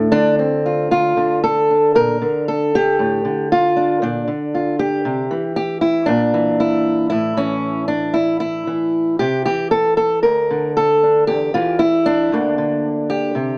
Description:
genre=folk, solo fingerstyle acoustic guitar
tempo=116 BPM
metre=4/4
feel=straight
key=D minor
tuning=A4 = 443 Hz
part: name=fingerpicked old ladder-braced acoustic guitar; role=solo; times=0.0-13.6 s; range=D2 to Bb4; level=-18 LUFS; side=equal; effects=none
room=moderate studio reverb, RT60 0.8 s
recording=small speaker sound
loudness=-18 LUFS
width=mono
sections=0.9-13.6 A section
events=none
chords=0.0 Dm7; 0.9 N.C.; 2.0 Bb; 3.0 Dm/A; 4.0 Bb; 5.0 Cadd9; 6.1 Bb; 7.1 A; 9.2 C; 10.2 N.C.; 11.3 Em7; 12.3 Gm/D

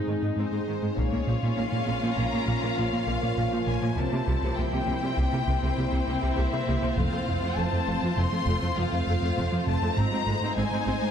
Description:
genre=cinematic, hybrid orchestral and electronic film score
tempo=100 BPM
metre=5/4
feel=straight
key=Bb minor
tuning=A4 = 440 Hz
part: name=rich studio viola section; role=accompaniment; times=0.0-11.1 s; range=Eb3 to Eb4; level=-34 LUFS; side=right 1 dB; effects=none
part: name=deep dark ambient pad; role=sustained chords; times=0.0-11.1 s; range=F3 to C5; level=-33 LUFS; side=right 1 dB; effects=chorus, built-in reverb
part: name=smooth synth bass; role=riff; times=0.1-11.1 s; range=C2 to Bb3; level=-30 LUFS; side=right 1 dB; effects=none
part: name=clear symphonic cello section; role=bass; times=0.1-11.1 s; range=F2 to C3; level=-34 LUFS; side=right 2 dB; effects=none
part: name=warm symphonic violin section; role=melody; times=0.4-11.1 s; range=C5 to C6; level=-33 LUFS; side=left 5 dB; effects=none
part: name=warm symphonic violin section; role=second line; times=1.0-11.1 s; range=Eb4 to F5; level=-34 LUFS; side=left 5 dB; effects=none
part: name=clear studio double bass section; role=bass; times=1.0-10.9 s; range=F1 to C2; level=-32 LUFS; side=right 2 dB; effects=none
part: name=taiko ensemble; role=drums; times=1.0-2.1, 7.0-8.1 s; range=none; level=-32 LUFS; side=left 1 dB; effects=none
room=moderate scoring stage reverb, RT60 1.8 s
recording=dark, warm production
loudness=-24 LUFS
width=side -8 dB against mid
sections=1.0-11.1 A section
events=none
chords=0.0 Ab; 1.0 Bbm; 4.0 C7; 7.0 F; 10.0 Ab

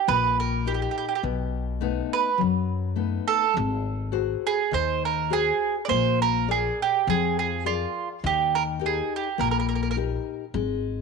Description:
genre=italian folk, Italian serenade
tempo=103 BPM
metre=4/4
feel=straight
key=unclear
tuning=A4 = 441 Hz
part: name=mandolin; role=melody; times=0.0-10.0 s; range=E#4 to D5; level=-24 LUFS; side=right 9 dB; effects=slapback echo
part: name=nylon-string guitar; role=accompaniment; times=0.1-11.0 s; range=B2 to D5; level=-29 LUFS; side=left 18 dB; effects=none
part: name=upright bass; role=bass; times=0.1-11.0 s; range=G#1 to F#2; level=-29 LUFS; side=left 2 dB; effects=none
room=light reverb, small room ambience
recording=1960s-style stereo with parts hard left and right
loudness=-23 LUFS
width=side -4 dB against mid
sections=0.0-11.0 A section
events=none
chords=0.0 D#; 1.2 B7; 3.6 G#7; 5.9 A#7; 8.2 D#

